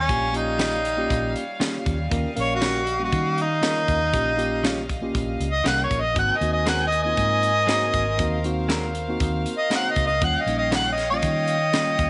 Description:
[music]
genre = straight-eighth soul blues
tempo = 118 BPM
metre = 4/4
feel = swing 55% on 16ths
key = Eb mixolydian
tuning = A4 = 441 Hz
[part]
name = mellow harmonica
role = melody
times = 0.0-12.1 s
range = Db4 to Gb5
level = -25 LUFS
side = equal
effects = overdrive
[part]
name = rich chamber string section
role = sustained chords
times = 0.0-12.1 s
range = G3 to Ab5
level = -34 LUFS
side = equal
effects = none
[part]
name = vintage muted fingered electric bass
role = bass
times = 0.0-12.1 s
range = Ab1 to Eb3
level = -30 LUFS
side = equal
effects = none
[part]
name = mellow tine electric piano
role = accompaniment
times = 0.1-12.1 s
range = G3 to F5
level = -32 LUFS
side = equal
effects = none
[part]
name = tight funk drum kit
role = drums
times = 0.1-12.1 s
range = hi-hat, kick drum, snare drum, tambourine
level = -30 LUFS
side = equal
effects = none
[part]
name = direct-recorded clean electric guitar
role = stabs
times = 0.6-11.9 s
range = Eb3 to Bb4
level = -35 LUFS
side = equal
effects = none
[sound]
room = light reverb, studio ambience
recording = nothing above 11.0 kHz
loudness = -23 LUFS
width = mono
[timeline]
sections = 0.0-12.1 A section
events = harmonica solo 0.0-12.1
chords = 0.0 Eb9; 6.2 Ab9; 10.2 Eb9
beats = | 0.09 0.59 1.10 1.61 | 2.11 2.62 3.13 3.63 | 4.14 4.64 5.15 5.66 | 6.16 6.67 7.18 7.68 | 8.19 8.70 9.20 9.71 | 10.22 10.72 11.23 11.74

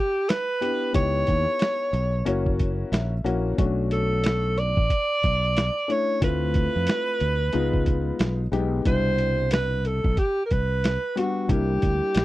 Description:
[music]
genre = hip hop, jazz-hop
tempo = 91 BPM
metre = 4/4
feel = swing 61% on 16ths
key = B minor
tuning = A4 = 440 Hz
[part]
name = breathy alto saxophone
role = melody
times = 0.0-12.2 s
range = F#4 to D5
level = -25 LUFS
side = right 1 dB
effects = none
[part]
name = lo-fi sampler-style drum kit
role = drums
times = 0.3-12.2 s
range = hi-hat, kick drum, snare drum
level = -25 LUFS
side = equal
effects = none
[part]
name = dark concert grand piano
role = accompaniment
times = 0.6-12.2 s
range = B2 to F#5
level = -28 LUFS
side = left 4 dB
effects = none
[part]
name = fretless electric bass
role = bass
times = 0.9-12.2 s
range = F#1 to F2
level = -25 LUFS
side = equal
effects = none
[sound]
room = little or no reverb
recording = dry, close 1970s-style studio recording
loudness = -21 LUFS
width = side -16 dB against mid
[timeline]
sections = 0.0-12.2 A section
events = grand piano fill 2.6-3.6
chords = 0.0 Cmaj7 (rootless); 0.9 C#m7b5; 2.3 F#7; 3.6 Bm7; 6.2 Dm7; 7.5 C#9; 8.9 Cmaj7; 11.5 C9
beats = 0.29 | 0.95 1.60 2.27 2.92 | 3.58 4.24 4.90 5.56 | 6.22 6.88 7.54 8.20 | 8.86 9.52 10.18 10.84 | 11.49 12.15

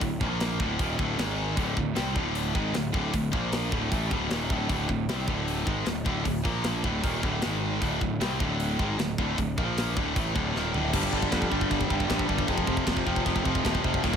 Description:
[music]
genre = heavy metal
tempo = 154 BPM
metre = 4/4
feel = straight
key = D phrygian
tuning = A4 = 439 Hz
[part]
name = high-gain distorted guitar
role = riff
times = 0.0-14.2 s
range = D2 to C4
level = -30 LUFS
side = left 12 dB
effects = distortion
[part]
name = scooped high-gain guitar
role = riff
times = 0.0-14.2 s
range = D2 to C4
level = -31 LUFS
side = right 13 dB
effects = distortion
[part]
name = fuzz picked electric bass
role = bass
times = 0.0-14.2 s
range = D1 to F2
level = -32 LUFS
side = equal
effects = overdrive
[part]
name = tight metal drum kit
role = drums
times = 0.0-14.2 s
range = china cymbal, crash cymbal, hi-hat, kick drum, snare drum, toms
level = -31 LUFS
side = equal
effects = none
[part]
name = overdriven semi-hollow guitar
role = riff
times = 10.9-14.2 s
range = Eb2 to G3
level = -31 LUFS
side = equal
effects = none
[sound]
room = studio ambience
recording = none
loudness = -25 LUFS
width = side -7 dB against mid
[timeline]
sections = 0.0-10.9 A section; 10.9-14.2 B section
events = drum fill 10.5-10.9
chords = 0.2 Bb5; 0.6 D5; 1.2 G#5; 1.6 D5; 3.3 Bb5; 3.7 D5; 6.5 Bb5; 6.8 D5; 7.4 G#5; 7.8 D5; 9.6 Bb5; 10.0 D5; 10.9 G5; 12.5 F5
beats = | 0.02 0.41 0.80 1.19 | 1.58 1.97 2.36 2.75 | 3.14 3.53 3.92 4.31 | 4.70 5.09 5.48 5.87 | 6.26 6.65 7.04 7.43 | 7.82 8.21 8.60 8.98 | 9.37 9.76 10.15 10.54 | 10.93 11.32 11.71 12.10 | 12.48 12.87 13.26 13.65 | 14.04

